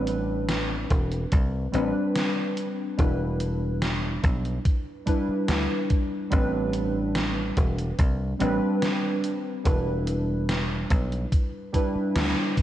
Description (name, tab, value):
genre	vaporwave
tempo	72 BPM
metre	4/4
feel	straight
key	A minor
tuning	A4 = 438 Hz
part	warbly lo-fi synth keys	accompaniment	0.0-12.6 s	G3 to B4	-27 LUFS	equal	analog chorus, analog delay
part	dry thumbed slap bass	bass	0.0-12.3 s	E1 to D2	-28 LUFS	equal	none
part	gated 80s digital drum machine	drums	0.1-12.6 s	hi-hat, snare drum	-31 LUFS	equal	gated reverb, gated reverb snare
part	electronic kick drum	drums	0.9-12.6 s	none	-23 LUFS	equal	none
room	wet lush hall reverb, RT60 2.5 s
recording	dreamy mix soaked in reverb, cassette tape, nothing above 10.3 kHz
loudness	-23 LUFS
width	side -12 dB against mid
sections	0.0-12.6 A section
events	band accent 12.2-12.6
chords	0.0 Am11; 3.0 Em7; 6.3 Am11; 9.7 Em7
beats	0.49 1.32 2.16 | 2.99 3.82 4.66 5.49 | 6.32 7.16 7.99 8.82 | 9.66 10.49 11.32 12.16